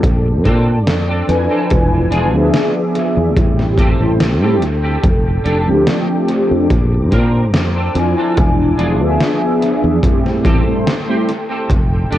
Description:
vaporwave; 72 BPM; 4/4; straight; A4 = 443 Hz
soft string machine; sustained chords; 0.0-12.2 s; G#4 to D6; -26 LUFS; equal; ensemble chorus
sustaining fretless electric bass; bass; 0.0-12.2 s; E1 to Bb2; -16 LUFS; equal
gated 80s digital drum machine; drums; 0.0-12.2 s; hi-hat, snare drum; -22 LUFS; equal; gated reverb, gated reverb snare, overdrive, vintage 12-bit sampler grit, dub echo
kick drum; drums; 0.0-11.9 s; -16 LUFS; equal; vintage 12-bit sampler grit
semi-hollow electric guitar; riff; 0.2-12.2 s; C4 to C5; -25 LUFS; right 1 dB; ensemble chorus, dub echo
mellow synth brass; accompaniment; 1.3-11.3 s; F3 to Ab5; -17 LUFS; equal; ensemble chorus, dub echo
light reverb, digital ambience; echo-heavy mix, cassette tape; -12 LUFS; side -13 dB against mid
0.0-12.2 A section
0.0 Bbmaj9; 1.7 E7b9; 3.4 Am7; 5.0 F69; 6.7 Bbmaj9; 8.4 E7b9; 10.0 Am7

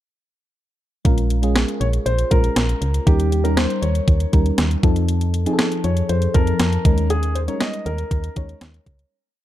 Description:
1980s-style pop; 119 BPM; 4/4; straight; Bb dorian; A4 = 440 Hz
mellow FM electric piano; accompaniment; 1.0-9.1 s; F3 to A5; -24 LUFS; left 2 dB; chorus, phaser
solid FM bass; bass; 1.1-9.0 s; Bb1 to F2; -20 LUFS; equal
clean 12-bit digital drum machine; drums; 1.1-9.1 s; hi-hat, kick drum, snare drum; -19 LUFS; equal; overdrive
dark grand piano; melody; 1.8-8.6 s; G4 to Eb5; -25 LUFS; equal
little or no reverb; dark, warm production; -16 LUFS; side -13 dB against mid
1.1-9.1 verse
fade-out 7.1-9.1
1.1 Bbm7; 3.1 Eb7; 4.8 F7; 6.9 Eb7sus4

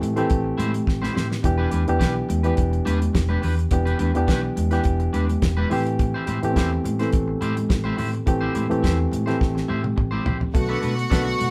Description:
disco; 105 BPM; 4/4; straight; E minor; A4 = 438 Hz
barky reed electric piano; accompaniment; 0.0-11.5 s; D3 to A4; -27 LUFS; equal; overdrive
electric guitar at the edge of break-up; accompaniment; 0.0-11.4 s; D4 to C5; -33 LUFS; equal
fingered electric bass; bass; 0.0-11.5 s; E1 to B2; -27 LUFS; equal
damped 70s drum kit; drums; 0.0-11.5 s; hi-hat, kick drum, snare drum, toms; -25 LUFS; equal
congas; percussion; 0.0-11.5 s; -33 LUFS; equal
clear studio string section; second line; 10.6-11.5 s; F#4 to F#5; -29 LUFS; equal
light reverb; band playing live in one room; -22 LUFS; mono
0.0-10.5 A section
drum fill 0.9-1.4, 9.4-10.5
0.0 Am7; 1.4 Em7; 5.7 Am7; 10.5 Bm7

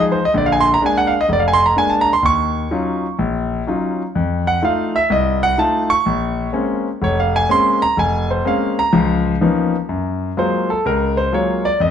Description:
solo jazz; 126 BPM; 4/4; swing 68% on 8ths; Bb minor; A4 = 440 Hz
clear concert grand piano; solo; 0.0-11.9 s; F1 to Db6; -15 LUFS; equal
moderate large studio reverb, RT60 1.3 s; close, detailed microphones; -15 LUFS; side -8 dB against mid
0.0-9.9 A section; 9.9-11.9 A section
grand piano solo 0.0-9.9, 9.9-11.9
0.3 Bb7; 2.2 Ebm9; 4.1 F7; 6.1 Bbm9; 8.9 Db13; 9.9 Gbmaj9

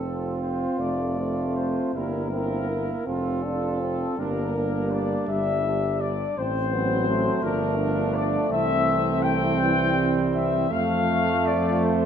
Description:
classical, hymn-like piece for brass band; 55 BPM (dotted quarters); 6/8; uneven beats, rubato; F major; A4 = 441 Hz
mellow trumpet section; melody; 0.0-12.1 s; A4 to G5; -27 LUFS; left 7 dB
clear flugelhorn; second line; 0.0-12.1 s; A3 to F4; -30 LUFS; right 6 dB
clear trombone; accompaniment; 0.0-12.1 s; G3 to D4; -29 LUFS; right 3 dB
clear trombone section; accompaniment; 0.0-12.1 s; E3 to C4; -31 LUFS; left 1 dB
mellow tuba; bass; 0.0-12.1 s; F1 to F2; -28 LUFS; equal
wet scoring stage reverb, RT60 1.6 s; -22 LUFS; side -8 dB against mid
0.0-12.1 A section
0.0 F; 1.9 Edim/G; 3.1 F; 4.2 Gm; 6.4 F#dim/A; 7.4 Gm7; 8.5 C; 10.7 F

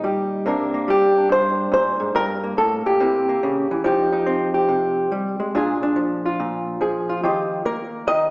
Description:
solo jazz; 142 BPM; 4/4; swing 65% on 8ths; C minor; A4 = 441 Hz
hollow-body jazz guitar; solo; 0.0-8.3 s; G2 to Eb5; -18 LUFS; equal
wet recital hall reverb, RT60 1.6 s; recorded in a church or concert hall, small speaker sound; -18 LUFS; side -26 dB against mid
0.5-8.3 A section
0.5 Csus2; 2.1 Gmadd9; 3.0 C7b9; 3.8 F7sus2; 5.5 Bb7; 7.2 Ebadd9

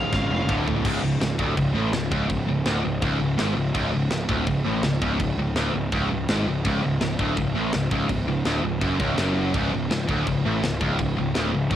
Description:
heavy metal; 166 BPM; 4/4; straight; A4 = 440 Hz
high-gain lead guitar; melody; 0.0-0.5 s; E#5; -30 LUFS; right 1 dB; distortion, cassette tape, tape echo
distorted electric guitar; riff; 0.0-11.8 s; C#2 to D3; -28 LUFS; equal; overdrive, cassette tape
heavy high-gain guitar; riff; 0.0-11.8 s; C#2 to D3; -29 LUFS; left 6 dB; distortion, cassette tape
high-gain distorted guitar; riff; 0.0-11.8 s; C#2 to D3; -29 LUFS; right 7 dB; distortion, cassette tape
fuzz picked electric bass; bass; 0.0-11.8 s; C#1 to A1; -26 LUFS; equal; overdrive
tight metal drum kit; drums; 0.1-11.8 s; crash cymbal, kick drum, snare drum, toms; -28 LUFS; equal
little or no reverb; home recording on cassette; -21 LUFS; side -11 dB against mid
0.9-11.8 A section
drum fill 0.1-0.9
0.5 D5; 0.9 C#5

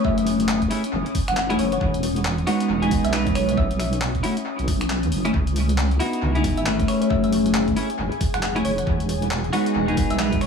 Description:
UK garage, two-step garage; 136 BPM; 4/4; swing 60% on 16ths; A4 = 438 Hz
thumb-piano-like synth pluck; melody; 0.0-10.5 s; C#5 to F#5; -29 LUFS; left 1 dB; chorus, phaser, analog delay
ethereal airy pad; sustained chords; 0.0-10.5 s; C#4 to D#6; -30 LUFS; left 2 dB; ensemble chorus, built-in reverb, sidechain pumping
clean electric guitar; stabs; 0.0-10.5 s; G#3 to B4; -23 LUFS; equal; analog chorus, tape echo
deep soft wobble bass; bass; 0.0-10.5 s; E1 to E2; -24 LUFS; equal; chorus
electronic kick drum; drums; 0.0-10.4 s; -25 LUFS; equal; studio reverb
breakbeat sampler-style drum kit; drums; 0.2-10.5 s; finger snaps, handclaps, hi-hat; -30 LUFS; equal; studio reverb, analog delay
light reverb, digital ambience; echo-heavy mix; -19 LUFS; side -6 dB against mid
0.0-10.5 A section
0.0 F#m7; 1.8 Emaj9; 3.6 Bsus4; 5.3 C#m11; 6.9 F#m7; 8.9 Emaj9

